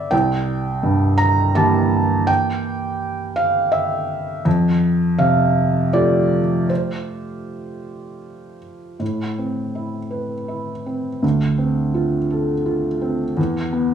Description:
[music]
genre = classical, contemporary piece for solo felt piano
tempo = 82 BPM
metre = 3/4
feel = rubato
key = A minor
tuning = A4 = 436 Hz
[part]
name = felt-muted upright piano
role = solo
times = 0.0-13.9 s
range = C2 to Bb5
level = -18 LUFS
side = right 1 dB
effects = none
[sound]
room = moderate large studio reverb, RT60 0.9 s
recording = band playing live in one room, studio ambience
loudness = -17 LUFS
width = side -8 dB against mid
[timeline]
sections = 0.0-9.0 A section; 9.0-13.9 B section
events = none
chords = 0.1 C7; 4.5 Fadd9; 9.0 Amadd9; 11.2 Dm7; 13.4 E5

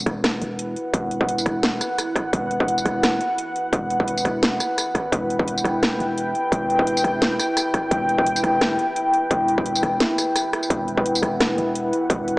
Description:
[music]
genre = half-time drum and bass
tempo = 172 BPM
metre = 4/4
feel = swing 56% on 16ths, half-time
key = E minor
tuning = A4 = 439 Hz
[part]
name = deep dark ambient pad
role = sustained chords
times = 0.1-12.4 s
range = E4 to G5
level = -22 LUFS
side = equal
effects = chorus, built-in reverb, sidechain pumping
[part]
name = long sustained 808-style bass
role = bass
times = 0.0-12.4 s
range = E1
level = -29 LUFS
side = equal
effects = none
[part]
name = drum and bass drum kit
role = drums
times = 0.1-12.4 s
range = hi-hat, rim click, snare drum, tambourine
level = -23 LUFS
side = equal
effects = none
[part]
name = electronic kick drum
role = drums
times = 0.1-12.2 s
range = none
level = -24 LUFS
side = equal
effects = distortion
[sound]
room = moderate lush hall reverb, RT60 2.2 s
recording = small speaker sound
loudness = -19 LUFS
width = side -21 dB against mid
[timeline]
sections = 0.0-12.4 A section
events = none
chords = 0.0 Em

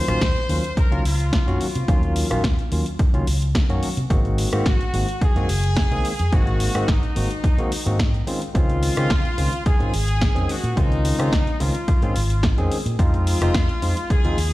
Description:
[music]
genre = nu-disco, nu disco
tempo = 108 BPM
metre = 4/4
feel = straight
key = Eb dorian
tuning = A4 = 437 Hz
[part]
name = bright trumpet section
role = melody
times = 0.0-14.5 s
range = Eb4 to C5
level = -28 LUFS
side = left 1 dB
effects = vintage 12-bit sampler grit, analog delay
[part]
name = barky tine electric piano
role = accompaniment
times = 0.0-14.4 s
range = Eb3 to Ab4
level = -26 LUFS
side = equal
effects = slapback echo
[part]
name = fingered electric bass with an envelope filter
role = bass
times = 0.1-14.5 s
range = F1 to Db3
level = -22 LUFS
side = equal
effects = tube saturation
[part]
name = house drum kit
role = drums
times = 0.1-14.5 s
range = hi-hat, rim click, snare drum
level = -28 LUFS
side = equal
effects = none
[part]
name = electronic kick drum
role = drums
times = 0.2-14.2 s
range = none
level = -21 LUFS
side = equal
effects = none
[sound]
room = light reverb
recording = played on a big sound system in a bare room, stone room reverb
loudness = -18 LUFS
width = side -17 dB against mid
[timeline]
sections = 0.0-14.5 A section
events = none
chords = 0.0 Ebm9; 4.1 Ab9; 8.3 Dbmaj9; 13.0 Fm7

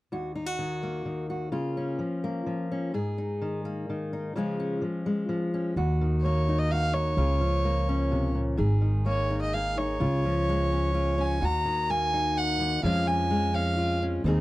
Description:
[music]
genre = acoustic folk duo or small band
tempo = 128 BPM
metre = 3/4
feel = straight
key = unclear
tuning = A4 = 437 Hz
[part]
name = fingerpicked steel-string acoustic guitar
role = accompaniment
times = 0.1-14.4 s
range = Eb2 to Ab4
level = -29 LUFS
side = left 1 dB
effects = none
[part]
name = upright bass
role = bass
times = 5.8-14.4 s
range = Ab1 to F2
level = -27 LUFS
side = right 1 dB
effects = none
[part]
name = dark fiddle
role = melody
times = 6.2-14.0 s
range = Db5 to Bb5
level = -28 LUFS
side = equal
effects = none
[sound]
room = light reverb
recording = dry, close 1970s-style studio recording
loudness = -25 LUFS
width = side -18 dB against mid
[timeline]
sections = 0.1-5.8 A section; 5.8-14.4 B section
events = none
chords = 0.1 Ebm; 1.5 Db6; 2.9 Absus2; 4.3 Db; 5.8 Ebm; 7.2 Db6; 8.6 Absus2; 10.0 Db; 11.4 Ebm; 12.8 Db/F

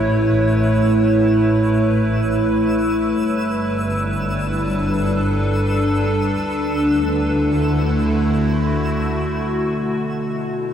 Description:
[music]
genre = ambient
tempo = free time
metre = none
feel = none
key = unclear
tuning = A4 = 440 Hz
[part]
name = evolving wavetable pad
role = sustained chords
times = 0.0-10.7 s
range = B2 to C#5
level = -18 LUFS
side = equal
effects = chorus, built-in reverb
[part]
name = muted studio double bass section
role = bass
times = 0.0-9.5 s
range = G1 to D2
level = -21 LUFS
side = equal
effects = tube saturation
[part]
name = twinkling granular texture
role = texture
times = 0.0-9.6 s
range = E6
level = -31 LUFS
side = equal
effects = built-in reverb
[sound]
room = wet cathedral reverb, RT60 5.4 s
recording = dark, warm production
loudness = -16 LUFS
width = side -8 dB against mid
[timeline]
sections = 0.0-9.6 A section; 9.6-10.7 B section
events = fade-in on synth texture 0.0-9.6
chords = 0.0 A; 3.3 Gadd9; 6.4 Dadd9; 9.6 B5

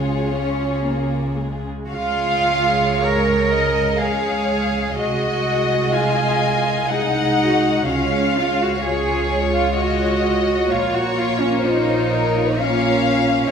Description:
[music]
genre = classical, slow romantic movement for string orchestra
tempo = 53-67 BPM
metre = 3/4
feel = rubato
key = Db major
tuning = A4 = 440 Hz
[part]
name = warm chamber violin section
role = melody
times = 0.0-13.5 s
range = Db5 to Eb5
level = -26 LUFS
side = left 5 dB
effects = none
[part]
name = warm chamber violin section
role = second line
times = 0.0-13.5 s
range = F4 to Ab5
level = -23 LUFS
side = left 4 dB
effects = none
[part]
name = warm studio viola section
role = accompaniment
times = 0.0-13.5 s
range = Ab3 to Ab4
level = -24 LUFS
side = left 1 dB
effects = none
[part]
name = dark chamber cello section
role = bass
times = 0.0-13.5 s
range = Db3 to Bb4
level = -21 LUFS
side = right 3 dB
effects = none
[part]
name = warm chamber double bass section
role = bass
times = 0.0-13.5 s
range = Bb1 to Db2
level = -26 LUFS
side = right 4 dB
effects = none
[sound]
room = wet recital hall reverb, RT60 1.4 s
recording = recorded in a church or concert hall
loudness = -17 LUFS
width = side -7 dB against mid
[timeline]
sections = 0.0-1.9 A section; 1.9-13.5 A section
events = none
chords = 0.0 Db; 5.0 Ab7/C; 7.9 Db; 10.7 Bbm

